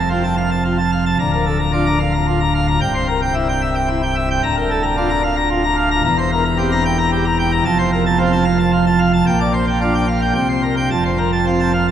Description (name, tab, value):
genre	classical, organ toccata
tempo	111 BPM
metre	3/4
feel	straight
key	F major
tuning	A4 = 440 Hz
part	pipe organ, plenum	solo	0.0-11.9 s	C1 to Bb5	-14 LUFS	equal	none
room	wet cathedral reverb, RT60 6.4 s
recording	none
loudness	-14 LUFS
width	side -10 dB against mid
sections	0.0-11.9 A section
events	none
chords	0.0 F; 1.2 Bb/D; 2.8 C; 4.4 Bb/D; 6.0 C7/E; 7.7 F; 9.3 Bb6; 10.4 C5; 10.9 F